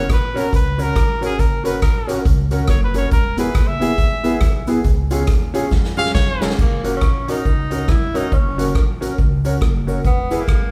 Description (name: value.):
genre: ska.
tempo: 139 BPM.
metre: 4/4.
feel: swing 61% on 8ths.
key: F# mixolydian.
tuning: A4 = 440 Hz.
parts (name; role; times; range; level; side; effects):
clear trumpet; melody; 0.0-6.5 s; G#4 to E#5; -26 LUFS; equal; none.
mellow electric guitar; accompaniment; 0.0-10.4 s; B3 to C#5; -28 LUFS; equal; harmonic tremolo, dub echo.
warm upright piano; stabs; 0.0-10.4 s; B3 to B4; -27 LUFS; equal; none.
upright bass; bass; 0.0-10.7 s; E1 to E#2; -26 LUFS; equal; none.
street-band drum kit; drums; 0.1-10.6 s; crash cymbal, hi-hat, kick drum, rim click, snare drum; -20 LUFS; equal; none.
cabasa; percussion; 0.1-10.6 s; none; -50 LUFS; equal; none.
clear tenor saxophone; melody; 6.6-10.7 s; A#3 to E4; -27 LUFS; equal; none.
room: light reverb.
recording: band playing live in one room.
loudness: -18 LUFS.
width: mono.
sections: 0.0-6.6 A section; 6.6-10.7 B section.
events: trumpet solo 0.0-6.6; drum fill 5.7-6.6.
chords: 0.0 F#; 3.1 E; 4.8 C#; 6.6 F#; 10.0 E.